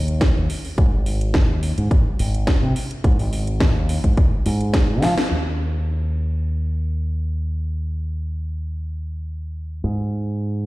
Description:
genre	nu-disco, nu disco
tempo	106 BPM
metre	4/4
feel	straight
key	unclear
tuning	A4 = 440 Hz
part	fingered electric bass with an envelope filter	bass	0.0-10.7 s	Ab1 to F3	-21 LUFS	equal	tube saturation
part	house drum kit	drums	0.1-5.4 s	crash cymbal, hi-hat, snare drum	-26 LUFS	equal	low-pass filter on hats, low-pass filter on snare, low-pass filter on cymbals
part	electronic kick drum	drums	0.2-4.9 s	none	-17 LUFS	equal	none
room	light reverb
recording	played on a big sound system in a bare room, stone room reverb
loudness	-19 LUFS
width	side -19 dB against mid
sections	0.0-5.3 A section; 5.3-10.7 B section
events	drum fill 5.0; band accent 5.2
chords	none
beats	0.21 | 0.78 1.35 1.91 2.48 | 3.04 3.61 4.18 4.74 | 5.31 5.88 6.44 7.01 | 7.57 8.14 8.71 9.27 | 9.84 10.40

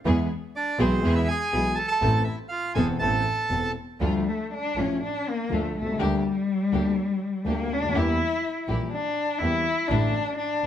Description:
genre	tango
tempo	122 BPM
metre	4/4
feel	rubato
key	A harmonic minor, D minor from 4.0 s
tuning	A4 = 439 Hz
part	warm concert grand piano	accompaniment	0.1-10.1 s	E1 to A4	-29 LUFS	left 1 dB	none
part	rich studio string section	stabs	0.1-10.7 s	A3 to A4	-33 LUFS	right 1 dB	none
part	rich double bass	bass	0.1-10.7 s	E1 to E2	-28 LUFS	right 1 dB	none
part	bandoneon	melody	0.6-3.7 s	C4 to A5	-26 LUFS	right 3 dB	none
part	warm cello	second line	4.0-10.7 s	G3 to E4	-25 LUFS	left 3 dB	none
room	moderate large studio reverb, RT60 1.2 s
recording	none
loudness	-23 LUFS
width	side -10 dB against mid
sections	0.0-4.0 A section; 4.0-10.7 B section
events	cello solo 4.0-10.7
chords	0.1 E; 2.0 Amadd9; 4.0 Dm; 6.0 Gm/D; 7.9 Edim; 9.9 Asus4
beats	| 0.06 0.55 1.04 1.53 | 2.02 2.51 3.00 3.50 | 4.00 4.50 5.00 5.50 | 5.99 6.48 6.97 7.46 | 7.95 8.44 8.93 9.41 | 9.91 10.40

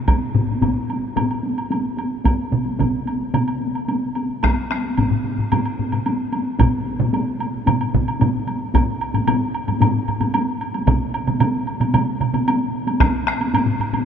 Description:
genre	japanese traditional, taiko drum ensemble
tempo	111 BPM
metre	4/4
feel	straight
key	none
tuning	none
part	taiko ensemble	percussion	0.1-14.1 s	none	-22 LUFS	equal	none
part	taiko ensemble	percussion	0.1-13.1 s	none	-22 LUFS	equal	none
part	woodblock	percussion	0.1-14.1 s	none	-27 LUFS	right 3 dB	none
part	taiko ensemble	percussion	0.3-14.1 s	none	-23 LUFS	left 4 dB	none
part	taiko ensemble	percussion	2.5-12.5 s	none	-24 LUFS	right 4 dB	none
room	wet huge ambient reverb, RT60 7.4 s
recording	dark, warm production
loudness	-18 LUFS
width	side -8 dB against mid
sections	0.0-8.7 A section; 8.7-14.1 B section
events	speeding up 0.0-14.1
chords	none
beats	| 0.08 0.62 1.17 1.72 | 2.26 2.81 3.35 3.89 | 4.43 4.98 5.52 6.06 | 6.60 7.14 7.67 8.21 | 8.75 9.28 9.82 10.35 | 10.88 11.42 11.95 12.48 | 13.01 13.54

